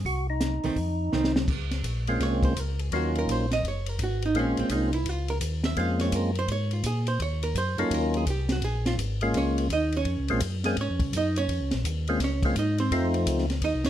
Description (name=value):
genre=soul jazz organ trio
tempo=168 BPM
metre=4/4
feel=swing 64% on 8ths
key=Bb minor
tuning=A4 = 441 Hz
part: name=mellow tonewheel organ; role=bass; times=0.0-13.9 s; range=Gb1 to Bb2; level=-28 LUFS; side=equal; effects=chorus vibrato, slow rotary speaker
part: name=percussive tonewheel organ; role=melody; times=0.1-13.5 s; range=F3 to Ab4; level=-28 LUFS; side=equal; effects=slow rotary speaker, overdrive
part: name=compact cocktail drum kit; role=drums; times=0.1-13.9 s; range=crash cymbal, hi-hat, kick drum, ride cymbal, snare drum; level=-32 LUFS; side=left 1 dB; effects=none
part: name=archtop guitar, miked and amplified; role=accompaniment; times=0.6-13.9 s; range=Eb3 to F5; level=-30 LUFS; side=right 3 dB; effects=none
room=moderate club reverb, RT60 0.7 s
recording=none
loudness=-24 LUFS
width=side -11 dB against mid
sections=0.0-1.5 A section; 1.5-13.9 B section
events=drum fill 1.1-1.5; hollow-body jazz guitar solo 1.5-13.9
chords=0.1 Cdim7; 0.8 F7; 1.5 Bbm7; 2.9 Ebm7; 4.3 Bbm7; 7.2 Ebm7; 8.6 Bbm7; 12.9 F7